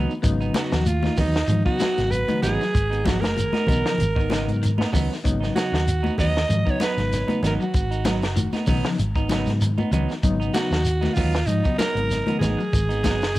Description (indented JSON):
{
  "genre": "afrobeat",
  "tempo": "96 BPM",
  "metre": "4/4",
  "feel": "swing 54% on 16ths",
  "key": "G# dorian",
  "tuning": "A4 = 440 Hz",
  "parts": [
    { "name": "electric guitar at the edge of break-up", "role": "arpeggios", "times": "0.0-13.4 s", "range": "D#3 to F#3", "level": "-31 LUFS", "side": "left 4 dB", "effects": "analog chorus, cassette tape" },
    { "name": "semi-hollow electric guitar", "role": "stabs", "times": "0.0-13.2 s", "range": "F#3 to D#4", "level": "-31 LUFS", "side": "right 6 dB", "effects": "cassette tape" },
    { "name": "hollow-body short-scale fingered electric bass", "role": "bass", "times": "0.0-13.4 s", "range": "F#1 to G#2", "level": "-24 LUFS", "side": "equal", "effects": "none" },
    { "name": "mellow reed electric piano", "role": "accompaniment", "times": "0.1-12.6 s", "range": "C#3 to F#4", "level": "-28 LUFS", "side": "left 3 dB", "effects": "fast tremolo, cassette tape" },
    { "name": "shekere", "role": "percussion", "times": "0.1-13.4 s", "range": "none", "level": "-30 LUFS", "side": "right 1 dB", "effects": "none" },
    { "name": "compact cocktail drum kit", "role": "drums", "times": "0.2-13.4 s", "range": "hi-hat, kick drum, snare drum", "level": "-26 LUFS", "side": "equal", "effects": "cassette tape" },
    { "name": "congas", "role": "percussion", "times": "0.5-13.2 s", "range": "none", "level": "-26 LUFS", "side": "left 1 dB", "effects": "none" },
    { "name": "raspy alto saxophone", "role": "melody", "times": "0.6-13.4 s", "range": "D#4 to D#5", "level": "-26 LUFS", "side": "right 2 dB", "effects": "tape echo" }
  ],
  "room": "small room ambience",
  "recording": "home recording on cassette",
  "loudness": "-20 LUFS",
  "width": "side -17 dB against mid",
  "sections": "0.0-13.4 A section",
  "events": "none",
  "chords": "0.0 G#m7",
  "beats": "| 0.23 0.86 1.49 2.11 | 2.74 3.37 3.99 4.62 | 5.24 5.87 6.50 7.12 | 7.74 8.37 8.99 9.61 | 10.24 10.86 11.48 12.11 | 12.73 13.35"
}